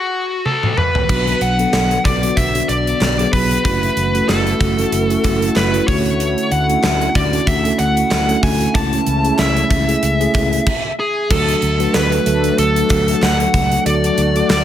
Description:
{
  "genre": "1980s-style pop",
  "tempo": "94 BPM",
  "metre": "4/4",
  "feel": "swing 55% on 16ths",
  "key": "unclear",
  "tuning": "A4 = 441 Hz",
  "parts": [
    { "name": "smooth overdriven lead guitar", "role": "melody", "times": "0.0-14.6 s", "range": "F#4 to A5", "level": "-19 LUFS", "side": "equal", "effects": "digital delay" },
    { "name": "gated 80s drum kit", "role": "drums", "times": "0.5-14.6 s", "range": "crash cymbal, hi-hat, kick drum, snare drum, tambourine, toms", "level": "-19 LUFS", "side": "equal", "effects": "none" },
    { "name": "mellow tine electric piano", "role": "accompaniment", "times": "1.1-14.6 s", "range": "F#3 to B4", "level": "-20 LUFS", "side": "equal", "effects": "medium stereo tremolo" },
    { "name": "warm analog pad", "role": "sustained chords", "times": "1.1-14.6 s", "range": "C#3 to F#4", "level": "-25 LUFS", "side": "right 2 dB", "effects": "wide subtle chorus" },
    { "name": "vintage muted fingered electric bass", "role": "bass", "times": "1.1-14.6 s", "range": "F#1 to D2", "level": "-20 LUFS", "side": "equal", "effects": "none" },
    { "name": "group handclap", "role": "percussion", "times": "1.7-14.6 s", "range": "none", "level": "-33 LUFS", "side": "right 4 dB", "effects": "none" },
    { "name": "mellow synth brass", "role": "stabs", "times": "12.3-12.5 s", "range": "F#3 to A4", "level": "-28 LUFS", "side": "right 3 dB", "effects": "none" }
  ],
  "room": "light reverb",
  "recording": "none",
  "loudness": "-14 LUFS",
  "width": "side -11 dB against mid",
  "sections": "0.0-1.1 A section; 1.1-11.3 B section; 11.3-14.6 C section",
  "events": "stop 0.0-1.1, 10.7-11.3; drum fill 0.5-1.1",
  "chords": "0.0 B7(no3); 1.1 Bm; 3.6 F#m7; 5.9 Dmaj7; 8.8 Amaj7/C#; 11.3 D"
}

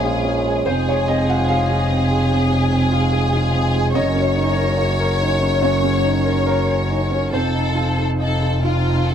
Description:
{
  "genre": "neoclassical piano and strings",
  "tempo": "68-74 BPM",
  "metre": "4/4",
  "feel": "rubato",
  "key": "unclear",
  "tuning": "A4 = 439 Hz",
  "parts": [
    { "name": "rich symphonic violin section", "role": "melody", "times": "0.0-9.1 s", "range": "F4 to Db5", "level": "-22 LUFS", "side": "left 2 dB", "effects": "none" },
    { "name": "felt-muted upright piano", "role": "accompaniment", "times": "0.0-9.1 s", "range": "F2 to Gb5", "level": "-21 LUFS", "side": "right 2 dB", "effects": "none" },
    { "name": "hand-pumped harmonium", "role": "sustained chords", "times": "0.0-9.1 s", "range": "Ab3 to A5", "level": "-30 LUFS", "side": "equal", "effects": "none" },
    { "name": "clear double bass", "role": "bass", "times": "0.0-9.1 s", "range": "F1 to Bb1", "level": "-20 LUFS", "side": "left 1 dB", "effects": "none" }
  ],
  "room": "wet booth ambience, RT60 0.2 s",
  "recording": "heard from further back in the room",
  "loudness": "-16 LUFS",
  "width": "side -8 dB against mid",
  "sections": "0.0-9.1 A section",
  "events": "none",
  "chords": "0.0 Bbm7; 0.7 Fm; 3.9 Ebm7/Gb; 7.3 F7"
}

